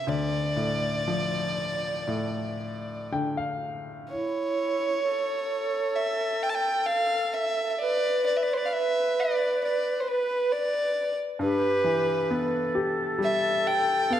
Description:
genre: celtic folk, Celtic slow air.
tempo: 56-68 BPM.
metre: 4/4.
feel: rubato.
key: D dorian.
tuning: A4 = 440 Hz.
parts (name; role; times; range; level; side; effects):
dark fiddle; melody; 0.0-14.2 s; B4 to A5; -27 LUFS; right 1 dB; slapback echo.
bright upright piano; accompaniment; 0.0-4.1, 11.4-14.2 s; D2 to G5; -29 LUFS; left 2 dB; none.
baroque flute; second line; 4.1-14.2 s; E4 to B4; -29 LUFS; equal; none.
room: moderate concert hall reverb, RT60 2.3 s.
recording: dark, warm production.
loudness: -24 LUFS.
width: side -10 dB against mid.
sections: 0.0-4.1 A section; 4.1-14.2 B section.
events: upright piano fill 2.6-4.1.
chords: 0.1 Dm; 4.1 N.C.; 11.4 Em/G.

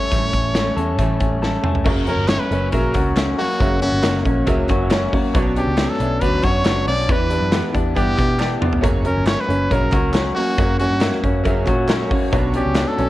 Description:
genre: jangly indie pop.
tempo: 138 BPM.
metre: 4/4.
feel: straight.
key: unclear.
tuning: A4 = 440 Hz.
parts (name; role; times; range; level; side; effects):
brilliant trumpet; melody; 0.0-13.1 s; F#4 to D5; -24 LUFS; equal; plate reverb, analog delay.
fingerpicked steel-string acoustic guitar; accompaniment; 0.0-13.1 s; F#2 to A4; -26 LUFS; right 3 dB; plate reverb.
electric guitar through a small old amp; arpeggios; 0.0-13.1 s; F#2 to A4; -23 LUFS; left 3 dB; plate reverb.
vintage muted picked electric bass; bass; 0.1-13.1 s; F#1 to B2; -23 LUFS; equal; none.
big rock drum kit; drums; 0.1-13.1 s; crash cymbal, hi-hat, kick drum, snare drum, toms; -21 LUFS; equal; none.
warm upright piano; accompaniment; 1.8-13.1 s; C#4 to A#5; -26 LUFS; equal; plate reverb.
group handclap; percussion; 2.3-12.9 s; none; -33 LUFS; right 3 dB; none.
room: light reverb.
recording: worn, warbling old tape, cassette tape, warbly pitch drift.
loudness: -16 LUFS.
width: side -16 dB against mid.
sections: 0.0-1.9 A section; 1.9-13.1 B section.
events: drum fill 1.4-1.9, 8.4-8.8; upright piano fill 4.5-5.3.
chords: 0.0 A7; 1.9 F#; 5.3 Bmadd9; 7.1 Em7; 8.8 F#; 12.3 Bmadd9.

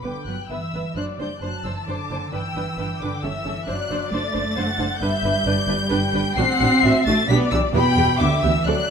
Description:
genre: quick classical-period movement for string orchestra.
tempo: 132 BPM.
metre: 3/4.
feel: rubato.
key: G major.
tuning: A4 = 440 Hz.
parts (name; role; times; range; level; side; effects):
warm symphonic violin section; melody; 0.0-8.9 s; B5 to C7; -26 LUFS; left 5 dB; none.
rich studio viola section; accompaniment; 0.0-8.7 s; B3 to C5; -28 LUFS; right 3 dB; none.
rich studio double bass section; bass; 0.0-8.7 s; F#1 to E2; -26 LUFS; right 2 dB; none.
warm studio cello section; bass; 0.0-8.9 s; B2 to C4; -25 LUFS; right 2 dB; none.
rich studio violin section; second line; 0.1-8.9 s; D5 to A5; -26 LUFS; left 2 dB; none.
room: moderate scoring stage reverb, RT60 1.6 s.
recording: none.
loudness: -19 LUFS.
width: side -6 dB against mid.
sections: 0.0-8.9 A section.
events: none.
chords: 0.0 G; 1.0 D7/F#; 2.3 G; 3.2 A7/G; 3.7 D7/F#; 5.0 G; 6.4 D7/A; 7.3 G/B; 7.7 Em; 8.2 G/D.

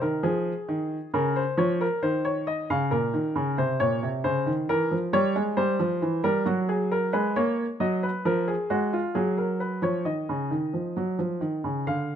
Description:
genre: classical, baroque-style two-part invention for grand piano.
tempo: 67 BPM.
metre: 4/4.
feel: straight.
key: unclear.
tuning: A4 = 440 Hz.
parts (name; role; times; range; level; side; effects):
warm baby grand piano; solo; 0.0-12.2 s; Bb2 to F5; -24 LUFS; equal; none.
room: light reverb.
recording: close, detailed microphones.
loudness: -24 LUFS.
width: side -9 dB against mid.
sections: 0.0-12.2 A section.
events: none.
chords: 0.0 Ab5; 1.1 Dbmaj7; 2.9 Bbmadd9; 4.7 C7/E; 6.5 Ebm/Gb; 8.3 Fdim; 10.1 Dbadd9.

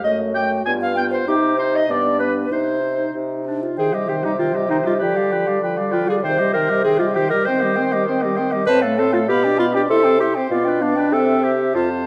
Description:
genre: quick classical-period movement for wind quintet.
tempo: 98 BPM.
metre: 2/4.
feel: straight.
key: C minor, C major from 8.7 s.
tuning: A4 = 441 Hz.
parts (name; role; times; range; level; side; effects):
hollow concert flute; melody; 0.0-12.1 s; G4 to C6; -28 LUFS; equal; none.
warm oboe; second line; 0.0-12.1 s; G4 to Ab5; -27 LUFS; equal; none.
clear clarinet; accompaniment; 0.0-11.9 s; D4 to C5; -23 LUFS; equal; none.
mellow French horn; accompaniment; 0.0-12.1 s; Eb3 to E4; -27 LUFS; equal; none.
mellow bassoon; bass; 0.0-12.1 s; F2 to Eb3; -26 LUFS; equal; none.
room: wet recital hall reverb, RT60 1.4 s.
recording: dark, warm production.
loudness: -19 LUFS.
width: mono.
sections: 0.0-3.8 A section; 3.8-12.1 B section.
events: none.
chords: 0.0 F#m6; 0.7 G; 1.3 Cm; 1.9 G; 2.5 Cm; 5.0 G7/D; 6.2 Cm; 7.5 Cm/Eb; 8.7 F/A; 9.3 G7/B; 9.9 C; 10.5 G7/B; 11.1 C.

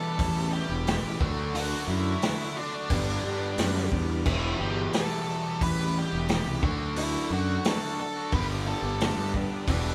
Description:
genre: classic rock.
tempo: 88 BPM.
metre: 4/4.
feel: straight.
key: E minor.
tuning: A4 = 441 Hz.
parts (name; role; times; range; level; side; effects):
octave-fuzz lead guitar; melody; 0.0-9.9 s; D4 to B4; -36 LUFS; equal; distortion.
picked twelve-string acoustic guitar; accompaniment; 0.0-9.9 s; E2 to G4; -40 LUFS; equal; none.
bright tonewheel organ; sustained chords; 0.0-9.9 s; F#3 to B4; -45 LUFS; equal; none.
biting overdriven guitar; riff; 0.0-9.9 s; E2 to G4; -39 LUFS; equal; none.
overdriven semi-hollow guitar; riff; 0.0-9.9 s; E2 to D4; -36 LUFS; equal; none.
fuzz fingered electric bass; bass; 0.2-9.9 s; E1 to G2; -33 LUFS; equal; overdrive.
vintage drum kit; drums; 0.2-9.8 s; crash cymbal, hi-hat, kick drum, snare drum; -33 LUFS; equal; none.
room: moderate stone room reverb, RT60 0.9 s.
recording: band playing live in one room.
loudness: -28 LUFS.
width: mono.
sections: 0.0-9.9 A section.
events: none.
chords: 0.0 Em; 1.2 D; 2.9 G; 4.3 Em; 6.6 D; 8.3 G.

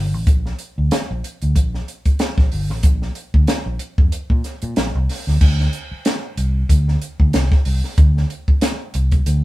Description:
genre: funk.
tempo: 93 BPM.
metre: 4/4.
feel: swing 56% on 16ths.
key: unclear.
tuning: A4 = 442 Hz.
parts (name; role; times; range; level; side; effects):
fingered electric bass; bass; 0.0-9.4 s; G1 to Bb2; -19 LUFS; equal; none.
compact cocktail drum kit; drums; 0.3-9.4 s; crash cymbal, hi-hat, kick drum, snare drum; -16 LUFS; equal; none.
room: moderate studio reverb, RT60 0.6 s.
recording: band playing live in one room.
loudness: -16 LUFS.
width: side -17 dB against mid.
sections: 0.0-5.4 A section; 5.4-9.4 B section.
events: none.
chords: none.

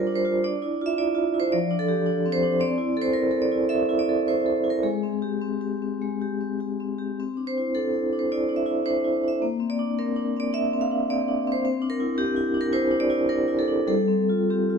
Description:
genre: classical, contemporary piece for solo vibraphone.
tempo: 98-111 BPM.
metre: 4/4.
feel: rubato.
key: unclear.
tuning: A4 = 440 Hz.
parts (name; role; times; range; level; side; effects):
vibraphone with medium hard mallets; solo; 0.0-14.8 s; F3 to F5; -22 LUFS; equal; none.
room: moderate stone room reverb, RT60 1.3 s.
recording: dark, warm production.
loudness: -22 LUFS.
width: side -6 dB against mid.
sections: 0.0-14.8 A section.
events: none.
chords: 0.4 Dmadd9; 1.5 F69; 2.6 C6; 4.9 Abmaj7; 7.2 Cadd9; 9.4 Bbadd9; 11.6 Cadd9; 13.9 G9sus4.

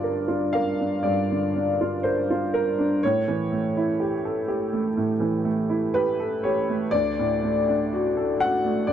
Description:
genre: neoclassical minimalist piano.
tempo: 61 BPM.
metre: 4/4.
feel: rubato.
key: G minor.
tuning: A4 = 440 Hz.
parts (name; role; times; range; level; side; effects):
clear upright piano; solo; 0.0-8.9 s; D2 to F#5; -22 LUFS; equal; none.
room: moderate studio reverb, RT60 0.7 s.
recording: dark, warm production.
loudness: -22 LUFS.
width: side -9 dB against mid.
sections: 0.0-8.9 A section.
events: none.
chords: 0.0 Gm7; 3.0 A7; 6.9 D.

